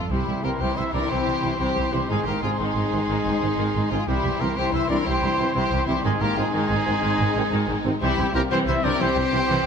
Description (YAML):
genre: cinematic, heroic adventure film score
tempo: 122 BPM (dotted quarters)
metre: 12/8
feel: straight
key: unclear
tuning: A4 = 440 Hz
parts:
  - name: clear studio violin section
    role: melody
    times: 0.0-9.7 s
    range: Eb4 to C5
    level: -29 LUFS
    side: left 3 dB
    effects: none
  - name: clear trumpet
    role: stabs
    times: 0.0-9.7 s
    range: G4 to E5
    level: -28 LUFS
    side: right 2 dB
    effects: none
  - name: rich symphonic cello section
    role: bass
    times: 0.0-9.6 s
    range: C2 to C3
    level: -30 LUFS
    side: right 3 dB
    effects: none
  - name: clear oboe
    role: second line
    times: 0.1-9.6 s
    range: G5 to C6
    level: -35 LUFS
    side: right 1 dB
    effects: none
  - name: mellow large flute ensemble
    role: second line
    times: 0.1-9.5 s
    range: C6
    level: -35 LUFS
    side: equal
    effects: none
  - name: warm clarinet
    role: second line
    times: 0.1-9.6 s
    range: Eb4 to E4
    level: -33 LUFS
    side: left 4 dB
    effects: none
  - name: warm symphonic violin section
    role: second line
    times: 0.1-9.7 s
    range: C4 to E4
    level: -32 LUFS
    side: left 5 dB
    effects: none
  - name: clear symphonic viola section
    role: accompaniment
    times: 0.1-9.7 s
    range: C3 to Ab3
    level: -31 LUFS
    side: right 1 dB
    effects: none
  - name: warm French horn section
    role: sustained chords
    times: 0.1-9.7 s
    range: G3 to E4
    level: -31 LUFS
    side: left 7 dB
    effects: none
  - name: rich symphonic double bass section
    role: bass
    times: 0.1-9.6 s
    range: Ab1 to C2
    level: -29 LUFS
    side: right 2 dB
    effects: none
  - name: timpani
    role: percussion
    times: 0.1-0.6 s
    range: C3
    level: -37 LUFS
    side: left 2 dB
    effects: none
  - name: warm trombone section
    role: sustained chords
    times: 0.4-9.4 s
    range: Eb3 to C4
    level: -33 LUFS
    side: right 4 dB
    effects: none
room: moderate scoring stage reverb, RT60 2.1 s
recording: none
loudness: -20 LUFS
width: side -6 dB against mid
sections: 0.1-9.7 A section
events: none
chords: 0.1 C; 2.1 Ab; 4.1 C; 6.1 Ab; 8.0 C